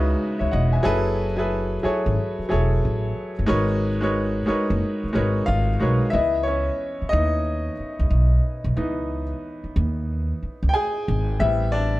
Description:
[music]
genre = R&B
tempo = 91 BPM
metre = 4/4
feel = swing 63% on 16ths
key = unclear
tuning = A4 = 440 Hz
[part]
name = bright upright piano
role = accompaniment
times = 0.0-12.0 s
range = C#3 to G#5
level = -23 LUFS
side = equal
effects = none
[part]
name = upright bass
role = bass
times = 0.0-12.0 s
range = E1 to D#2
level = -22 LUFS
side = equal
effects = none
[sound]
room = light reverb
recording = dark, warm production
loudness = -20 LUFS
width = side -17 dB against mid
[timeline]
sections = 0.0-6.1 A section; 6.1-12.0 B section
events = upright piano solo 6.1-12.0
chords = 0.0 C#m11; 0.8 F#m11; 3.5 G#m11; 6.1 C#m9; 11.4 Am9

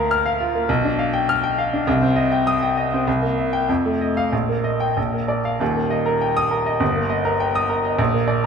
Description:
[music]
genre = classical, virtuoso piano study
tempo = 100 BPM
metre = 2/4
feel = rubato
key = Eb major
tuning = A4 = 438 Hz
[part]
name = clear grand piano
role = solo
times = 0.0-8.5 s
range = Eb1 to F6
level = -18 LUFS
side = equal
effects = none
[sound]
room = moderate scoring stage reverb, RT60 1.9 s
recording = minimal, uncompressed stereo recording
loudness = -18 LUFS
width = side -6 dB against mid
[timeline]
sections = 0.0-5.6 A section; 5.6-8.5 A section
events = none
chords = 0.0 Bb/D; 0.7 G7/B; 1.9 Cm; 3.1 C7; 3.7 F7; 4.3 Eb/Bb; 5.0 Bb; 5.6 Eb; 6.8 Eb/G

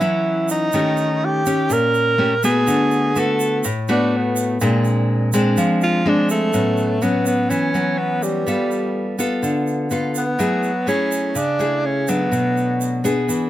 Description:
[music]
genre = bossa nova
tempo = 124 BPM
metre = 4/4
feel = straight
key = A major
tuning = A4 = 440 Hz
[part]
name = breathy tenor saxophone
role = melody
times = 0.0-13.1 s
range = G3 to A#4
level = -20 LUFS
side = right 1 dB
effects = none
[part]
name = nylon-string guitar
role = accompaniment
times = 0.0-13.5 s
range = A2 to A4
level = -18 LUFS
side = left 1 dB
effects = none
[part]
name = egg shaker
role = percussion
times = 0.0-13.5 s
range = none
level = -31 LUFS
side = right 6 dB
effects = none
[sound]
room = light reverb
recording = close, detailed microphones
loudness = -16 LUFS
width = side -13 dB against mid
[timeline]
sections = 0.0-6.5 A section; 6.5-13.5 B section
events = tenor saxophone solo 0.0-6.5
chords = 0.0 A6 (rootless); 0.7 D#7#11; 2.7 D6; 4.6 Bb9; 6.5 A69; 8.5 G9; 10.4 F#m9; 12.3 Bm7

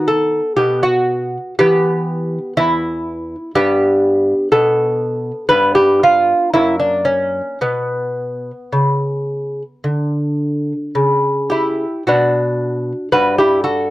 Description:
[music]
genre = classical, baroque-style dance for lute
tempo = 52-62 BPM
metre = 4/4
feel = rubato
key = E minor, B minor from 3.5 s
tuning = A4 = 440 Hz
[part]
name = lute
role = solo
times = 0.0-13.9 s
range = E2 to B4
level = -14 LUFS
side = equal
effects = none
[sound]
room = light reverb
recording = dry, close 1970s-style studio recording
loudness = -14 LUFS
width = side -16 dB against mid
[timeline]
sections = 0.0-12.1 A section; 12.1-13.9 B section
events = none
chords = 0.0 B/D#; 1.6 Em; 3.5 G7; 6.5 F#; 7.6 Bm

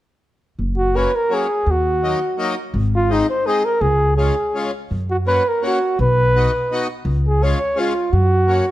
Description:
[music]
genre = alpine folk, alpine dance band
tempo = 167 BPM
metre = 3/4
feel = straight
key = F# major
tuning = A4 = 440 Hz
[part]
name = upright bass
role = bass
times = 0.6-8.6 s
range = F#1 to F#2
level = -18 LUFS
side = equal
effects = none
[part]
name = mellow flugelhorn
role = melody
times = 0.8-8.7 s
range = D#4 to C#5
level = -18 LUFS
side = right 1 dB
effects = none
[part]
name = accordion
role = accompaniment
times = 0.9-8.7 s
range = F#3 to F#4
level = -24 LUFS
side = left 3 dB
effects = none
[sound]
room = light reverb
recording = none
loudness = -16 LUFS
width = side -14 dB against mid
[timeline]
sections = 0.6-8.7 A section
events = none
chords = 0.6 F#; 1.7 D#m; 2.7 G#; 3.8 C#; 4.9 F#; 6.0 B; 7.1 C#; 8.1 F#

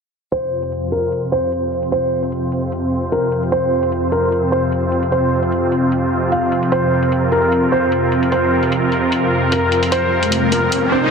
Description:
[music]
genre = heavy wobble dubstep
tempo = 150 BPM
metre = 4/4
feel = swing 54% on 16ths, half-time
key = unclear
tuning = A4 = 440 Hz
[part]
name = dark grand piano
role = melody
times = 0.3-11.1 s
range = Bb4 to F5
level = -19 LUFS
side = equal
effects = vintage 12-bit sampler grit, ping-pong delay
[part]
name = supersaw pad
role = sustained chords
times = 0.3-11.1 s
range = F2 to C5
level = -17 LUFS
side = equal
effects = none
[part]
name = electronic hi-hat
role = drums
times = 0.3-10.8 s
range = none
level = -27 LUFS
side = left 1 dB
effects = none
[part]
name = riser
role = sound effects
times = 10.2-11.1 s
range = none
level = -19 LUFS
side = equal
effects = none
[sound]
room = moderate lush hall reverb, RT60 2.1 s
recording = dense, heavily limited modern master, low-pass filter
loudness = -15 LUFS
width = side -5 dB against mid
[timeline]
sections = 0.3-11.1 A section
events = filter sweep 0.3-11.1; riser 10.2-11.1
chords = 0.3 F5

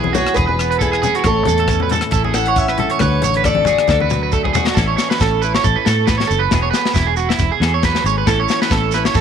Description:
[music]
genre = highlife guitar band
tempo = 137 BPM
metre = 4/4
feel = swing 55% on 16ths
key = A major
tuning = A4 = 441 Hz
[part]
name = clean electric guitar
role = accompaniment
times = 0.0-9.2 s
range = A2 to A4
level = -24 LUFS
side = left 11 dB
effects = none
[part]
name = electric guitar at the edge of break-up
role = arpeggios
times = 0.0-9.2 s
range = E4 to C#5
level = -19 LUFS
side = right 11 dB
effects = analog chorus, tape echo
[part]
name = fingered electric bass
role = bass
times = 0.0-9.2 s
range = E1 to A2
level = -20 LUFS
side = equal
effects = none
[part]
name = congas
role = percussion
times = 0.0-4.7 s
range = none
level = -24 LUFS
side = left 8 dB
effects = none
[part]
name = picked steel-string acoustic guitar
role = melody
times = 0.1-3.9 s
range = G#4 to F#5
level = -19 LUFS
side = left 2 dB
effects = none
[part]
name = tight funk drum kit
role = drums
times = 0.1-9.2 s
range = hi-hat, kick drum, rim click, snare drum, toms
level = -20 LUFS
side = left 3 dB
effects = none
[part]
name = shekere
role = percussion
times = 0.1-9.2 s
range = none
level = -27 LUFS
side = right 4 dB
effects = none
[sound]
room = light reverb, small room reverb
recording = 1960s-style stereo with parts hard left and right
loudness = -14 LUFS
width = side -8 dB against mid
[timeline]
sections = 0.0-4.8 A section; 4.8-9.2 B section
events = steel-string acoustic guitar solo 0.0-4.8; drum fill 3.9-4.8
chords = 0.0 E; 1.3 A; 3.0 D; 4.8 A; 6.5 E; 8.3 A

